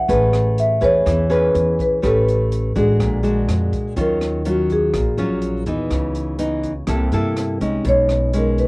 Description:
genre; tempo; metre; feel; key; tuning
bossa nova; 124 BPM; 4/4; straight; Eb minor from 4.0 s; A4 = 440 Hz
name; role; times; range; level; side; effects
marimba with soft mallets; melody; 0.0-8.7 s; Gb4 to F#5; -20 LUFS; equal; cassette tape
nylon-string guitar; accompaniment; 0.0-8.7 s; A#2 to B4; -20 LUFS; equal; cassette tape
upright bass; bass; 0.1-8.7 s; A1 to G2; -21 LUFS; equal; none
open jazz drum kit; drums; 0.1-8.7 s; hi-hat, kick drum, rim click; -29 LUFS; equal; cassette tape
room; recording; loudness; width
wet booth ambience, RT60 0.3 s; home recording on cassette; -16 LUFS; side -26 dB against mid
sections
0.0-4.0 A section; 4.0-8.7 B section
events
marimba solo 4.0-8.7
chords
0.1 Amaj9; 2.0 A9; 3.0 A#7b13; 4.0 Ebm9; 5.9 Dbm9; 6.9 C6; 7.9 B69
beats
| 0.08 0.57 1.05 1.54 | 2.03 2.51 3.00 3.48 | 3.97 4.45 4.94 5.42 | 5.91 6.39 6.88 7.37 | 7.85 8.34

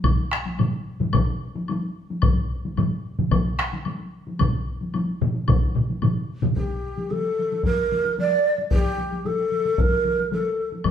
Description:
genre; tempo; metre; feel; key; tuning
japanese traditional, taiko drum ensemble; 111 BPM; 4/4; straight; unclear; A4 = 442 Hz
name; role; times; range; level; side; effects
taiko ensemble; percussion; 0.0-10.9 s; none; -28 LUFS; left 2 dB; none
taiko ensemble; percussion; 0.0-6.6, 10.9 s; none; -29 LUFS; left 5 dB; none
taiko ensemble; percussion; 0.0-6.6 s; none; -25 LUFS; right 2 dB; none
taiko ensemble; percussion; 0.0-10.9 s; none; -24 LUFS; left 1 dB; none
woodblock; percussion; 0.0-6.2, 10.8-10.9 s; none; -34 LUFS; left 4 dB; none
breathy mellow long shakuhachi; melody; 6.6-10.7 s; G4 to D5; -22 LUFS; right 1 dB; none
room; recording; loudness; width
wet large studio reverb, RT60 1.1 s; band playing live in one room; -21 LUFS; side -9 dB against mid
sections
0.0-6.6 A section; 6.6-10.9 B section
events
speeding up 0.0-10.9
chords
none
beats
| 0.04 0.59 1.14 1.69 | 2.23 2.78 3.32 3.86 | 4.41 4.95 5.49 6.03 | 6.57 7.11 7.65 8.18 | 8.72 9.26 9.79 10.32 | 10.86

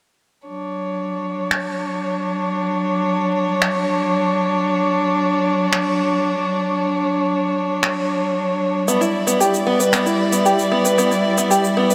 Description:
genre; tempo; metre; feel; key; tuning
folktronica; 114 BPM; 4/4; straight; D major; A4 = 440 Hz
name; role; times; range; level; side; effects
muted string quartet; sustained chords; 0.5-11.9 s; F#3 to D5; -21 LUFS; equal; none
electronic finger snaps and cabasa; drums; 1.5-11.9 s; none; -26 LUFS; equal; none
open-back banjo; arpeggios; 8.9-11.9 s; B3 to B4; -20 LUFS; equal; delay
room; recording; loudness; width
wet huge ambient reverb, RT60 4.9 s; dreamy mix soaked in reverb; -19 LUFS; mono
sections
0.5-11.9 A section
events
none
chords
0.5 Dmaj7; 8.9 Em7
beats
| 0.46 0.99 1.51 2.04 | 2.57 3.09 3.62 4.14 | 4.67 5.20 5.72 6.25 | 6.78 7.30 7.83 8.36 | 8.88 9.41 9.93 10.46 | 10.99 11.51

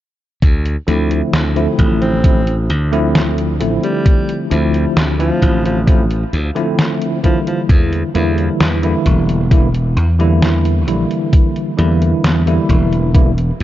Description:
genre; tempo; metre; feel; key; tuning
vaporwave; 66 BPM; 4/4; straight; D minor; A4 = 441 Hz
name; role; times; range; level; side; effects
glassy slap bass; bass; 0.4-13.6 s; E1 to E2; -16 LUFS; equal; none
detuned 8-bit digital drum machine; drums; 0.4-13.6 s; hi-hat, snare drum; -19 LUFS; equal; none
electronic kick drum; drums; 0.4-13.3 s; none; -12 LUFS; equal; none
bell-like tine electric piano; accompaniment; 0.9-13.3 s; D3 to E4; -17 LUFS; equal; medium stereo tremolo, analog chorus, analog delay
raspy alto saxophone; melody; 2.0-7.6 s; F3 to C4; -24 LUFS; equal; tape echo
room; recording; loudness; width
digital ambience; dark, warm production, cassette tape, nothing above 7.6 kHz; -12 LUFS; side -13 dB against mid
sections
0.4-13.6 A section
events
none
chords
0.4 Dm9; 7.7 Em7b5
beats
| 0.42 1.33 2.24 3.15 | 4.06 4.97 5.88 6.79 | 7.70 8.61 9.51 10.42 | 11.33 12.24 13.15

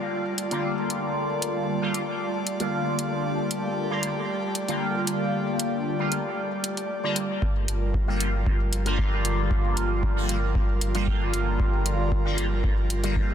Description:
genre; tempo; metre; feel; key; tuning
dub techno; 115 BPM; 4/4; straight; G minor; A4 = 439 Hz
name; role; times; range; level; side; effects
airy breathy pad; sustained chords; 0.0-13.3 s; G3 to D5; -31 LUFS; right 1 dB; chorus, sidechain pumping
flickering grainy texture; texture; 0.0-13.3 s; F3 to A5; -38 LUFS; equal; built-in reverb, sidechain pumping
electronic hi-hat; drums; 0.4-13.1 s; none; -29 LUFS; equal; overdrive
resonant sweep polysynth; stabs; 0.5-13.3 s; D3 to F4; -28 LUFS; equal; chorus, phaser, sidechain pumping, dub echo
warm sub bass; bass; 7.4-13.3 s; G1; -28 LUFS; equal; sidechain pumping
electronic kick drum; drums; 7.4-13.3 s; none; -26 LUFS; equal; overdrive
room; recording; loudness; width
light reverb, digital ambience; dense, heavily limited modern master; -23 LUFS; side -9 dB against mid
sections
0.0-7.4 A section; 7.4-13.3 B section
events
none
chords
0.0 Gm7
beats
0.12 0.64 | 1.16 1.68 2.21 2.73 | 3.25 3.77 4.29 4.81 | 5.34 5.86 6.38 6.90 | 7.42 7.94 8.47 8.99 | 9.51 10.03 10.55 11.07 | 11.60 12.12 12.64 13.16

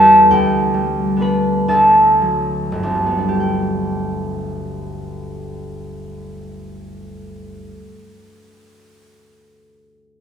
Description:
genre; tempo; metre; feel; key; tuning
classical, solo harp piece; 32-50 BPM (dotted quarters); 6/8; rubato; G major; A4 = 437 Hz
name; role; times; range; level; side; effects
concert harp; solo; 0.0-8.3 s; G1 to B5; -14 LUFS; equal; none
room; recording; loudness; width
wet recital hall reverb, RT60 1.6 s; heard from further back in the room; -14 LUFS; side -8 dB against mid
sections
0.0-3.4 A section; 3.4-9.7 B section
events
slowing down 0.0-3.4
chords
0.3 G/D; 1.7 D7; 3.4 G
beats
| 0.30 1.67 | 3.39 4.96 | 6.54 8.11

